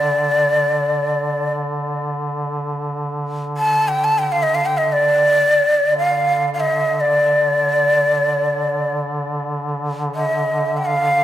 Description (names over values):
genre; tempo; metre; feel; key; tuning
Arabic maqam ensemble; free time; none; none; D maqam bayati; A4 = 438 Hz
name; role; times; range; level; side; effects
breathy bright ney; melody; 0.0-11.2 s; D5 to A5; -16 LUFS; equal; tape echo
clear duduk; drone; 0.0-11.2 s; D3; -24 LUFS; equal; none
room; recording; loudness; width
moderate scoring stage reverb, RT60 1.6 s; none; -16 LUFS; side -12 dB against mid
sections
0.0-11.2 A section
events
none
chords
none